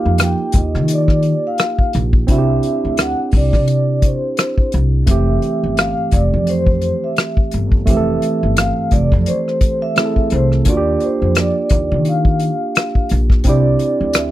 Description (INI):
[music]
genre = R&B, neo-soul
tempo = 86 BPM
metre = 4/4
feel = swing 56% on 16ths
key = F major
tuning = A4 = 441 Hz
[part]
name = vibraphone with soft mallets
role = melody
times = 0.0-14.3 s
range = C5 to G5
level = -21 LUFS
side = left 1 dB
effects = slapback echo
[part]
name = barky tine electric piano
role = accompaniment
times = 0.0-14.3 s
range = E3 to A4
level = -20 LUFS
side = right 4 dB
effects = none
[part]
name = upright bass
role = bass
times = 0.1-14.3 s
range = F1 to Eb3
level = -17 LUFS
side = equal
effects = none
[part]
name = unplugged drum kit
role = drums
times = 0.2-14.3 s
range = hi-hat, kick drum, rim click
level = -15 LUFS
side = left 1 dB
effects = none
[sound]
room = little or no reverb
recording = dry, close 1970s-style studio recording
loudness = -13 LUFS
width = side -14 dB against mid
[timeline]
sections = 0.0-14.3 A section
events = none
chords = 0.0 Ebadd9; 2.3 Cadd9; 5.1 Fmaj9; 10.7 Ebmaj9; 13.4 Cadd9